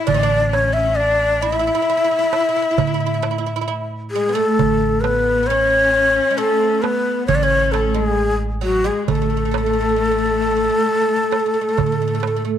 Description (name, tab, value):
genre	Turkish makam ensemble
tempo	133 BPM (eighths)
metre	10/8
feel	straight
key	A makam rast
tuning	A4 = 437 Hz
part	breathy ney	melody	0.0-12.4 s	F#4 to E5	-18 LUFS	left 2 dB	none
part	oud	second line	0.0-12.5 s	F#3 to E4	-25 LUFS	right 10 dB	none
part	rich cello	second line	0.0-12.6 s	F#3 to E4	-26 LUFS	left 10 dB	none
part	upright bass	bass	0.1-12.6 s	A1 to A2	-24 LUFS	right 1 dB	none
part	darbuka	percussion	0.1-12.4 s	none	-23 LUFS	right 11 dB	none
room	moderate spring reverb, RT60 1.4 s, small room reverb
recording	1960s-style stereo with parts hard left and right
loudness	-15 LUFS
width	side -9 dB against mid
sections	0.0-12.6 A section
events	none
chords	none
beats	| 0.09 0.54 0.99 1.44 1.89 2.34 2.79 3.24 3.69 4.14 | 4.59 5.04 5.49 5.94 6.39 6.84 7.29 7.74 8.19 8.64 | 9.09 9.54 9.99 10.44 10.89 11.34 11.79 12.24